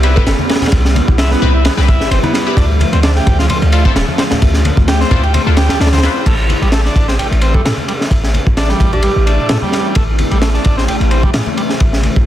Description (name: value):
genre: breakbeat, breaks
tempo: 130 BPM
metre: 4/4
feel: swing 54% on 16ths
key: A minor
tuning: A4 = 440 Hz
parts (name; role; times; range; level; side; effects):
- phased analog pad; sustained chords; 0.0-12.3 s; C3 to E4; -20 LUFS; left 1 dB; phaser, chorus, sidechain pumping
- combo organ; riff; 0.0-11.6 s; G3 to C5; -20 LUFS; equal; tube saturation, digital delay
- band-passed chord stab; stabs; 0.0-6.2 s; C4 to B4; -24 LUFS; left 4 dB; chorus, digital delay
- warm 808-style bass; bass; 0.0-12.3 s; D1 to A2; -14 LUFS; equal; tube saturation
- crunchy breakbeat drum kit; drums; 0.0-12.3 s; crash cymbal, kick drum, ride cymbal, snare drum; -14 LUFS; equal; none
- soft struck synth lead; melody; 0.2-2.6, 7.5-9.4 s; E4 to A4; -24 LUFS; right 1 dB; chorus, small speaker sound, digital delay
- congas; percussion; 0.4-12.2 s; none; -23 LUFS; left 3 dB; none
room: small room ambience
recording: dense, heavily limited modern master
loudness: -10 LUFS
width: side -12 dB against mid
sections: 0.0-6.3 A section; 6.3-12.3 B section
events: drop 0.0-6.3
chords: 0.0 Cmaj7; 2.6 Dmadd9; 6.3 Am